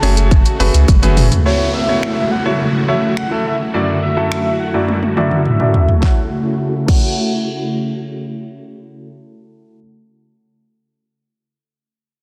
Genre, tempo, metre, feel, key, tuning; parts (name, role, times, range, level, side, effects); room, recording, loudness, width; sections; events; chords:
dance-pop; 105 BPM; 4/4; straight; F# minor; A4 = 444 Hz
soft octave-layered synth lead; melody; 0.0-0.9 s; A5; -31 LUFS; equal; chorus, phaser, delay
bright concert grand piano; accompaniment; 0.0-9.8 s; F#2 to D5; -22 LUFS; equal; sidechain pumping, low-pass filter
string machine, violas; sustained chords; 0.0-9.1 s; F#2 to F#4; -23 LUFS; equal; ensemble chorus, sidechain pumping, low-pass filter
warm sub bass; bass; 0.0-1.3 s; F#1 to C#2; -15 LUFS; equal; sidechain pumping
pop drum kit; drums; 0.0-7.0 s; crash cymbal, finger snaps, hi-hat, kick drum, shaker, snare drum, toms; -18 LUFS; equal; soft clipping on snare
airy dreamy lead; melody; 1.5-7.7 s; C#5 to F#5; -26 LUFS; equal; chorus, sidechain pumping, low-pass filter
downlifter; sound effects; 1.5-6.0 s; -27 LUFS; equal
moderate lush hall reverb, RT60 2.7 s; dense, heavily limited modern master; -15 LUFS; mono
0.0-1.5 A section; 1.5-6.0 B section; 6.0-8.3 C section
drum fill 0.9-1.5, 4.9-6.0; filter sweep 1.5-6.0
0.0 F#madd9; 1.5 F#m7; 3.7 Dadd9/F#; 6.0 F#m7